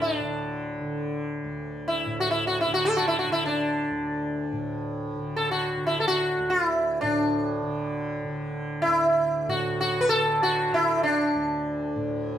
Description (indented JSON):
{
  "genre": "indian classical, Hindustani",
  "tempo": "free time",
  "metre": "none",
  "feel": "none",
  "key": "unclear",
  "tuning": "A4 = 440 Hz",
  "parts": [
    { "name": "sitar", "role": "melody", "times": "0.0-12.4 s", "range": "D4 to B4", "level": "-24 LUFS", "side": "equal", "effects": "none" },
    { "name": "tanpura", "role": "drone", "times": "0.0-12.4 s", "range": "D2 to D3", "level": "-32 LUFS", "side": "right 1 dB", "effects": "none" }
  ],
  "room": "moderate large studio reverb, RT60 0.9 s",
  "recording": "band playing live in one room",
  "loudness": "-23 LUFS",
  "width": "side -10 dB against mid",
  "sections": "0.0-12.4 A section",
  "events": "none",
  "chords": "none"
}